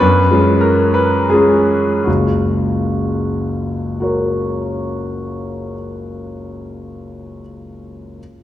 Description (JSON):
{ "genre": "classical, romantic character piece for solo piano", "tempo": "51-66 BPM (dotted quarters)", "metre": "6/8", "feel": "rubato", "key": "F# major", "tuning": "A4 = 440 Hz", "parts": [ { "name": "bright grand piano", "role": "solo", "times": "0.0-8.2 s", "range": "F#1 to C#5", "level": "-15 LUFS", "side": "equal", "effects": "none" } ], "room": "wet recital hall reverb, RT60 1.8 s", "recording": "dark, warm production", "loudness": "-14 LUFS", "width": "side -12 dB against mid", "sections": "0.0-2.1 A section; 2.1-5.9 B section", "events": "slowing down 0.0-2.1", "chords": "0.0 C#7/F#; 2.1 F#" }